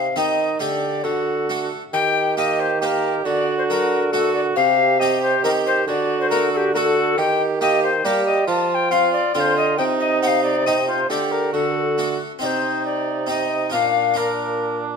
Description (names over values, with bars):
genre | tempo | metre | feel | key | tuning
classical, renaissance-style consort dance | 137 BPM | 3/4 | straight | unclear | A4 = 440 Hz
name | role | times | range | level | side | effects
mellow alto recorder | melody | 0.0-14.8 s | G4 to A5 | -21 LUFS | left 5 dB | none
harpsichord | accompaniment | 0.0-15.0 s | Bb2 to Bb4 | -26 LUFS | left 1 dB | none
mellow bassoon | bass | 0.0-15.0 s | Bb2 to G3 | -24 LUFS | right 2 dB | none
mellow cor anglais | second line | 0.2-15.0 s | D4 to G4 | -24 LUFS | right 7 dB | none
room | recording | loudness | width
moderate recital hall reverb, RT60 1.4 s | none | -17 LUFS | side -6 dB against mid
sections
0.0-1.9 A section; 1.9-12.4 A section; 12.4-15.0 B section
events
none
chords
0.0 Cm; 0.6 Dsus4; 1.0 D; 1.9 Eb; 3.3 D; 4.6 Cm; 5.9 D; 7.2 Eb; 8.5 F5; 9.8 Cm; 11.1 Dsus4; 11.5 D; 12.4 Cm; 13.7 Bb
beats
0.17 | 0.61 1.05 1.49 | 1.94 2.38 2.81 | 3.25 3.69 4.13 | 4.56 5.00 5.44 | 5.87 6.31 6.74 | 7.17 7.61 8.04 | 8.48 8.91 9.35 | 9.79 10.22 10.66 | 11.10 11.54 11.98 | 12.43 12.86 13.30 | 13.74 14.18 14.61